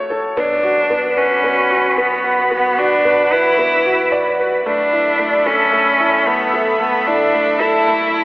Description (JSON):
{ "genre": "piano and strings electronica", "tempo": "112 BPM", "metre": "4/4", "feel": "straight", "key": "B minor", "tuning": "A4 = 442 Hz", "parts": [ { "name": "felt-muted upright piano", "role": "riff", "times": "0.0-8.2 s", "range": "A3 to D5", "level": "-19 LUFS", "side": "equal", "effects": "tape echo" }, { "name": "clear cello", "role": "melody", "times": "0.4-8.2 s", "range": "B3 to E4", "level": "-16 LUFS", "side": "equal", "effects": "none" }, { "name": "lush unison pad", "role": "sustained chords", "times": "0.8-8.2 s", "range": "F#4 to B5", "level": "-18 LUFS", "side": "equal", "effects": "chorus, phaser" }, { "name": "warm sub bass", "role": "bass", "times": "0.4-8.2 s", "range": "B1", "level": "-44 LUFS", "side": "equal", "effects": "high-pass filter" }, { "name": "impact", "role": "sound effects", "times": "0.4-2.5 s", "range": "none", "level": "-36 LUFS", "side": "equal", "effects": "none" } ], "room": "wet lush hall reverb, RT60 2.8 s", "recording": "dreamy mix soaked in reverb, telephone sound", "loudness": "-13 LUFS", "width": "side -22 dB against mid", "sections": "0.4-8.2 A section", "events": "break 0.0-0.4; drop 0.4-8.2; impact 0.4-2.5", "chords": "0.4 Bm; 4.7 Esus4/B", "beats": "| 0.37 0.91 1.44 1.98 | 2.51 3.05 3.58 4.12 | 4.66 5.19 5.73 6.26 | 6.80 7.33 7.87" }